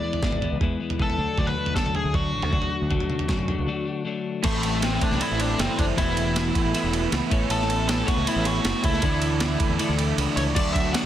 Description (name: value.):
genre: indie rock.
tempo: 157 BPM.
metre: 4/4.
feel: straight.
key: unclear.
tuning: A4 = 440 Hz.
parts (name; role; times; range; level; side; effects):
nasal lead guitar with a parked wah; melody; 0.0-11.1 s; A3 to F#5; -28 LUFS; equal; overdrive, plate reverb.
twelve-string electric guitar; riff; 0.0-11.1 s; A2 to D5; -28 LUFS; left 5 dB; none.
boom bap sampler-style drum kit; drums; 0.1-11.0 s; crash cymbal, kick drum, ride cymbal, snare drum, toms; -26 LUFS; right 1 dB; none.
growling fingered electric bass; bass; 0.2-11.1 s; E1 to F#2; -28 LUFS; right 1 dB; overdrive.
metallic FM bell; second line; 4.4-11.1 s; A4 to F#6; -37 LUFS; left 2 dB; chorus, phaser, plate reverb.
biting overdriven guitar; riff; 4.4-11.1 s; E2 to F#4; -30 LUFS; right 10 dB; analog chorus.
mellow tonewheel organ; sustained chords; 4.5-11.1 s; D4 to D6; -39 LUFS; right 2 dB; none.
room: light reverb.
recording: dense, heavily limited modern master.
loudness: -21 LUFS.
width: side -11 dB against mid.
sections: 0.0-4.4 A section; 4.4-10.6 B section.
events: break 3.7-4.4; kick and snare drop out 10.2-10.6.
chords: 0.0 E; 1.2 D; 4.4 Am; 6.0 Esus4; 7.3 Aadd9; 9.0 Dsus2; 10.6 D.